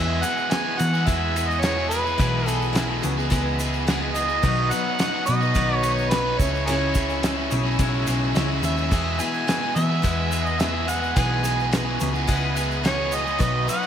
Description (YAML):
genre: folk rock and heartland rock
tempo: 107 BPM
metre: 4/4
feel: straight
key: unclear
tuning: A4 = 439 Hz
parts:
  - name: overdriven harmonica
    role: melody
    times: 0.0-13.9 s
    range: G#4 to G#5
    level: -26 LUFS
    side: right 2 dB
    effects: slapback echo, digital delay
  - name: picked steel-string acoustic guitar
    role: accompaniment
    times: 0.0-13.9 s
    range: B2 to B4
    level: -28 LUFS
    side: left 5 dB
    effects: none
  - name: rich chamber string section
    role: sustained chords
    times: 0.0-13.9 s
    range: B4 to E6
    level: -36 LUFS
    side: left 2 dB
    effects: none
  - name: overdriven electric guitar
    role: riff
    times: 0.0-13.9 s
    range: E2 to G#4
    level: -27 LUFS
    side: right 2 dB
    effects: slapback echo
  - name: hollow-body short-scale picked electric bass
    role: bass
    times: 0.0-13.7 s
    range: B1 to E3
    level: -26 LUFS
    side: equal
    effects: none
  - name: cloth-damped thuddy drum kit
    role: drums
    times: 0.2-13.8 s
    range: crash cymbal, kick drum, ride cymbal, snare drum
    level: -27 LUFS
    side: equal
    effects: none
  - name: egg shaker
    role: percussion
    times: 0.2-13.9 s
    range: none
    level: -39 LUFS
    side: right 5 dB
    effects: none
room: moderate scoring stage reverb, RT60 2.1 s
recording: big arena sound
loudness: -20 LUFS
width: side -9 dB against mid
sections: 0.0-13.9 A section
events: none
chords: 0.0 E; 4.4 B; 6.4 C#m